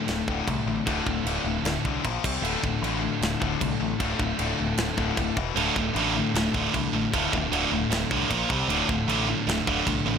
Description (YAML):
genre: heavy metal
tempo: 153 BPM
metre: 4/4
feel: straight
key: D minor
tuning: A4 = 440 Hz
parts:
  - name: distorted electric guitar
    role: riff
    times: 0.0-10.2 s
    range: D2 to F4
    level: -29 LUFS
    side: equal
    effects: distortion
  - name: heavy high-gain guitar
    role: riff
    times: 0.0-10.2 s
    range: D2 to C4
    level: -29 LUFS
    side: left 10 dB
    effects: distortion
  - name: growling picked electric bass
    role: bass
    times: 0.1-10.2 s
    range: D1 to C2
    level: -31 LUFS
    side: right 1 dB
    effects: overdrive
  - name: tight metal drum kit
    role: drums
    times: 0.1-10.0 s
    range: crash cymbal, kick drum, snare drum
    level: -31 LUFS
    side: right 1 dB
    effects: none
  - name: heavy high-gain guitar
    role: riff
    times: 5.6-10.2 s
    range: D2 to C4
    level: -26 LUFS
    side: right 10 dB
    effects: distortion
room: small room reverb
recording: none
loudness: -23 LUFS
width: side -7 dB against mid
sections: 0.0-10.2 A section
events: none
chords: 0.0 Dm; 2.0 Bb5; 2.2 C5; 2.4 Dm; 5.4 E5; 5.6 Dm; 8.3 Bb5; 8.5 C5; 8.7 Dm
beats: 0.09 0.48 | 0.87 1.26 1.65 2.04 | 2.44 2.83 3.22 3.61 | 4.00 4.39 4.79 5.18 | 5.57 5.96 6.35 6.74 | 7.13 7.52 7.91 8.30 | 8.70 9.09 9.48 9.87